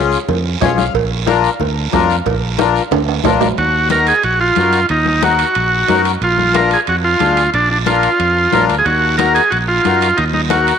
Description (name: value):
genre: latin, cumbia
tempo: 182 BPM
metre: 4/4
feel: straight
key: Eb harmonic minor from 3.6 s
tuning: A4 = 441 Hz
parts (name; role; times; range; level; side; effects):
- accordion; accompaniment; 0.0-10.7 s; Db4 to F5; -18 LUFS; left 8 dB; none
- fingered electric bass; bass; 0.0-10.7 s; Bb1 to Gb2; -19 LUFS; right 2 dB; none
- guiro; percussion; 0.1-10.8 s; none; -28 LUFS; right 14 dB; none
- congas; percussion; 0.3-10.7 s; none; -23 LUFS; left 10 dB; none
- cowbell and timbales; percussion; 0.3-10.8 s; none; -23 LUFS; right 13 dB; none
- bombo; percussion; 0.6-3.6 s; none; -26 LUFS; right 6 dB; none
- combo organ; melody; 3.6-10.8 s; D4 to Bb4; -13 LUFS; right 2 dB; slapback echo
room: moderate plate reverb, RT60 3.4 s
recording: 1960s-style stereo with parts hard left and right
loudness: -12 LUFS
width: side -7 dB against mid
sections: 0.0-3.6 A section; 3.6-10.8 B section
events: accordion fill 0.4-0.9; drum fill 2.9-3.6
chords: 0.0 Db; 0.9 Bb; 3.6 Ebm; 6.2 Bb; 8.9 Ebm